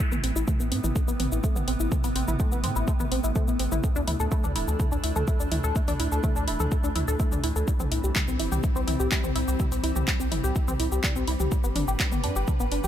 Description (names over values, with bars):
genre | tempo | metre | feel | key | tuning
melodic techno | 125 BPM | 4/4 | straight | A minor | A4 = 438 Hz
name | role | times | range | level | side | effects
evolving wavetable pad | sustained chords | 0.0-12.9 s | C3 to B4 | -33 LUFS | equal | chorus, built-in reverb, sidechain pumping
tight sequenced synth | arpeggios | 0.0-12.9 s | G3 to A4 | -30 LUFS | left 1 dB | chorus, sidechain pumping, dub echo
deep house drum kit | drums | 0.0-12.9 s | handclaps, hi-hat, shaker, toms | -32 LUFS | equal | sidechain pumping on toms, sidechain pumping on perc, sidechain pumping on hats
electronic kick drum | drums | 0.0-12.6 s | none | -26 LUFS | equal | none
round analog bass | bass | 0.1-12.9 s | D1 to A2 | -28 LUFS | equal | tube saturation, sidechain pumping
room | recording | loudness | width
little or no reverb | none | -23 LUFS | side -10 dB against mid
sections
0.0-12.9 A section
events
none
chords
0.0 Amadd9; 3.8 Dsus2; 7.7 C; 11.5 G